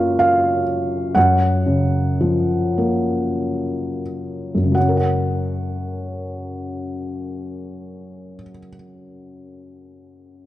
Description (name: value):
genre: classical, lyrical solo piano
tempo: 27-43 BPM (dotted quarters)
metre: 6/8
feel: rubato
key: F# major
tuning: A4 = 440 Hz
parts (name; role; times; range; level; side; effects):
- felt-muted upright piano; solo; 0.0-10.5 s; F#2 to F#5; -18 LUFS; equal; none
room: light reverb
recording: dark, warm production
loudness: -18 LUFS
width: side -14 dB against mid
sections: 0.0-4.8 A section; 4.8-9.2 B section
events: slowing down 0.0-4.8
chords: 0.0 F#maj7; 4.8 F#